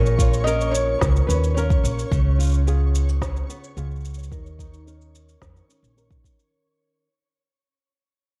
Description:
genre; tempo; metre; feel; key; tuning
folktronica; 109 BPM; 4/4; straight; unclear; A4 = 440 Hz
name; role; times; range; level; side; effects
felt-muted upright piano; melody; 0.0-1.9 s; A#4 to D#5; -28 LUFS; equal; none
flamenco guitar; arpeggios; 0.0-7.1 s; A#2 to A#4; -33 LUFS; equal; low-pass filter
upright bass; bass; 0.0-6.2 s; A#1 to E#2; -24 LUFS; equal; none
flickering grainy texture; texture; 0.0-6.5 s; C#5 to C#6; -38 LUFS; equal; built-in reverb
electronic cabasa and snare drum; drums; 0.1-6.5 s; none; -34 LUFS; equal; none
electronic kick drum; drums; 0.2-6.4 s; none; -24 LUFS; equal; none
room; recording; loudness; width
studio ambience; dark, warm production; -21 LUFS; mono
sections
0.0-6.5 A section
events
fade-out 0.0-6.5; filter sweep on nylon-string guitar 0.0-6.5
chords
0.0 A#madd11; 2.1 C#7; 4.3 D#5

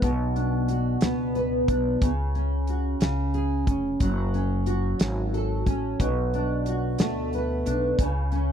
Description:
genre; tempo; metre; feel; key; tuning
six-eight pop ballad; 60 BPM (dotted quarters); 6/8; straight; unclear; A4 = 440 Hz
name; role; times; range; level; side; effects
nylon-string guitar; accompaniment; 0.0-8.5 s; B2 to B4; -26 LUFS; equal; double-tracked left and right
upright bass; bass; 0.0-8.5 s; E#1 to D2; -27 LUFS; equal; none
damped 70s drum kit; drums; 0.0-8.5 s; hi-hat, kick drum, snare drum; -23 LUFS; equal; none
room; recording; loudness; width
small room ambience; dry, close 1970s-style studio recording; -23 LUFS; side -8 dB against mid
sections
0.0-8.5 A section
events
none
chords
0.0 Bm; 2.0 F#5/C#; 3.0 C#; 4.0 F#m; 6.0 Bm7; 8.0 N.C.

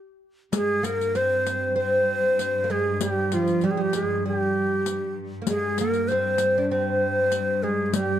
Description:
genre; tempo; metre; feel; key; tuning
Arabic maqam ensemble; 97 BPM; 4/4; straight; G maqam kurd; A4 = 435 Hz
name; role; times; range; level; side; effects
breathy ney; melody; 0.5-8.2 s; F4 to C5; -24 LUFS; equal; slapback echo, plate reverb
oud; second line; 0.5-8.2 s; F3 to D4; -26 LUFS; right 3 dB; none
rich chamber cello section; drone; 0.5-8.2 s; G2; -31 LUFS; left 3 dB; none
riq; percussion; 0.5-8.1 s; none; -30 LUFS; left 7 dB; none
room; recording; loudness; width
moderate studio reverb, RT60 0.5 s; dark, warm production; -21 LUFS; side -10 dB against mid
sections
0.5-8.2 A section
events
none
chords
none

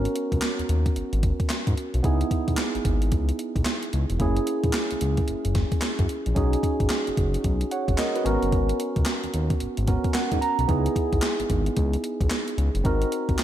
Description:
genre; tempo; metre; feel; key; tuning
R&B, new jack swing; 111 BPM; 4/4; swing 62% on 16ths; C# dorian; A4 = 440 Hz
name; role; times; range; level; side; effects
bright tine electric piano; accompaniment; 0.0-13.4 s; A#3 to A#5; -26 LUFS; right 2 dB; lush chorus, slapback echo
smooth synth bass; bass; 0.0-13.4 s; E1 to G#2; -25 LUFS; equal; none
gated 80s digital drum machine; drums; 0.1-13.4 s; handclaps, hi-hat, kick drum, snare drum; -26 LUFS; equal; gated reverb, gated reverb snare
room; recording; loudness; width
moderate lush hall reverb, RT60 2.3 s; big arena sound; -22 LUFS; side -12 dB against mid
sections
0.0-13.4 A section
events
tine electric piano fill 9.9-10.7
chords
0.0 G#m11; 2.0 C#m7; 4.2 F#9; 6.4 B69; 10.7 C#m7; 12.8 G#7

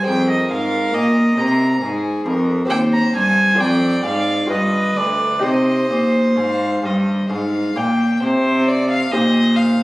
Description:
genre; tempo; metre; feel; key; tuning
classical, baroque-style sonata movement with continuo; 64-69 BPM; 3/4; rubato; C minor; A4 = 440 Hz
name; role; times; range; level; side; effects
warm violin; melody; 0.0-9.8 s; Ab4 to G5; -24 LUFS; left 1 dB; none
rich violin; second line; 0.0-9.8 s; C5 to Bb5; -20 LUFS; right 1 dB; none
lute; accompaniment; 0.0-9.8 s; D2 to D5; -25 LUFS; left 1 dB; none
rich cello; bass; 0.0-9.8 s; D2 to C3; -17 LUFS; equal; none
room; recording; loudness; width
light reverb; recorded on a phone in the room, studio reverb; -15 LUFS; side -19 dB against mid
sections
0.0-8.2 A section; 8.2-9.8 B section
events
none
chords
0.1 Fm; 2.7 Cm/Eb; 3.6 Ddim/F; 4.5 G7; 5.4 Cm

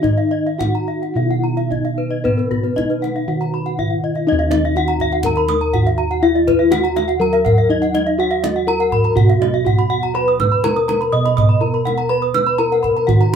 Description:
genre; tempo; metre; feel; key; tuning
Balinese gamelan; 123 BPM; 4/4; straight; Eb pelog; A4 = 439 Hz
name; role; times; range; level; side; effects
gamelan-type bronze metallophone; melody; 0.0-13.4 s; Cb4 to Eb5; -19 LUFS; left 1 dB; none
gamelan-type bronze metallophone; arpeggios; 0.0-13.2 s; Gb4 to Eb6; -24 LUFS; left 2 dB; none
gamelan-type bossed gongs; bass; 0.0-13.4 s; Eb2 to Cb5; -20 LUFS; equal; none
kendang; percussion; 0.0-13.4 s; none; -20 LUFS; right 1 dB; none
gamelan-type bronze metallophone; arpeggios; 0.2-13.4 s; Bb4 to Fb6+35c; -25 LUFS; right 3 dB; none
room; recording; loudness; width
wet small room reverb, RT60 0.5 s; band playing live in one room; -14 LUFS; side -7 dB against mid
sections
0.0-4.3 A section; 4.3-13.4 B section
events
none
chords
none

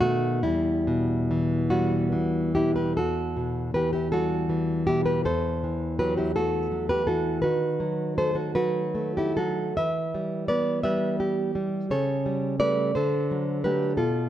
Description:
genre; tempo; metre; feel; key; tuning
romantic piece for solo classical guitar; 46-58 BPM (dotted quarters); 6/8; rubato; E minor; A4 = 436 Hz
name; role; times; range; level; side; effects
nylon-string guitar; solo; 0.0-14.3 s; E2 to E5; -23 LUFS; equal; none
room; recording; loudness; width
moderate recital hall reverb, RT60 1.3 s; none; -23 LUFS; side -12 dB against mid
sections
0.0-3.0 A section; 3.0-14.3 B section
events
none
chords
0.5 Em; 5.2 F#m7b5/E; 7.4 B7/D#; 9.8 Em; 11.9 A7/C#; 12.9 D

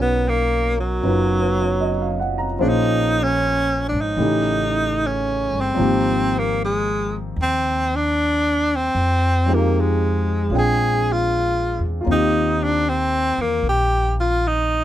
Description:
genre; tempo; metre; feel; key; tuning
jazz ballad; 76 BPM; 4/4; swing 67% on 8ths; Eb major; A4 = 440 Hz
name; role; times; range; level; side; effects
breathy tenor saxophone; melody; 0.0-14.8 s; F#3 to Ab4; -20 LUFS; equal; none
warm upright piano; accompaniment; 0.0-14.8 s; B2 to A#5; -24 LUFS; left 1 dB; none
upright bass; bass; 0.0-14.8 s; F#1 to F2; -23 LUFS; equal; none
room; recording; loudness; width
little or no reverb; close, detailed microphones; -17 LUFS; side -12 dB against mid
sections
0.0-14.8 A section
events
none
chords
0.0 Bmaj9; 2.6 Bbm9; 4.2 A7#11; 5.8 Abmaj13; 8.9 Fm7; 10.5 Bb13; 12.1 Eb69

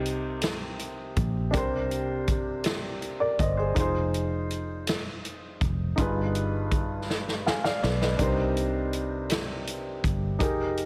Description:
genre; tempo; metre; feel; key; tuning
slow gospel; 54 BPM (dotted quarters); 6/8; straight; C minor; A4 = 439 Hz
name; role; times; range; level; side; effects
warm upright piano; accompaniment; 0.0-10.9 s; G2 to Ab5; -32 LUFS; equal; none
fingered electric bass; bass; 0.0-10.9 s; F1 to C2; -33 LUFS; equal; none
swinging big-band drum kit; drums; 0.1-10.9 s; hi-hat, kick drum, snare drum; -32 LUFS; equal; none
room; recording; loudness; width
light reverb, small room ambience; heavily compressed radio sound; -28 LUFS; mono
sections
0.0-10.9 A section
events
drum fill 7.1-8.2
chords
0.0 Cm7; 1.5 Gmadd11; 3.8 Fm7; 6.0 G7b9b13; 8.2 Cm9

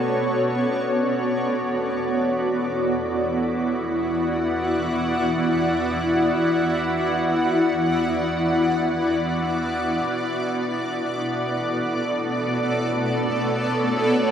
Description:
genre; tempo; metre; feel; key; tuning
ambient; free time; none; none; unclear; A4 = 440 Hz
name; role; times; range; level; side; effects
granular cloud pad; sustained chords; 0.0-14.3 s; B3 to F#5; -21 LUFS; equal; built-in reverb
warm studio cello section; bass; 0.0-14.3 s; E2 to B2; -33 LUFS; equal; none
organ-like drone; drone; 0.0-14.3 s; B3 to F#4; -27 LUFS; right 2 dB; ensemble chorus, built-in reverb
room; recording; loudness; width
wet echo chamber reverb, RT60 2.2 s; none; -20 LUFS; side -8 dB against mid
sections
0.0-14.3 A section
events
fade-in on cello section 0.0-14.3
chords
0.0 Bm9; 1.7 Esus2; 10.1 Bm9

